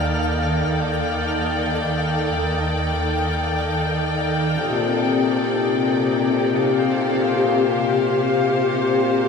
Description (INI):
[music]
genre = ambient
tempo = free time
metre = none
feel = none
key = unclear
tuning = A4 = 442 Hz
[part]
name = rich symphonic string section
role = sustained chords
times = 0.0-9.3 s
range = C3 to G5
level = -19 LUFS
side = left 1 dB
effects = none
[part]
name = warm studio double bass section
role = bass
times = 0.0-4.6 s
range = Eb2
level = -26 LUFS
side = equal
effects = none
[part]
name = twinkling granular texture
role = texture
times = 0.0-4.6 s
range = F5 to F6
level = -31 LUFS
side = equal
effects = built-in reverb
[part]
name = hand-pumped harmonium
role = drone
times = 4.6-9.3 s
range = Bb2 to C3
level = -22 LUFS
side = left 5 dB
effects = none
[sound]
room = wet echo chamber reverb, RT60 2.1 s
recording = none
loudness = -18 LUFS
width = side -5 dB against mid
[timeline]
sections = 0.0-4.6 A section; 4.6-9.3 B section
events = none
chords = 0.0 F/Eb; 4.6 Bb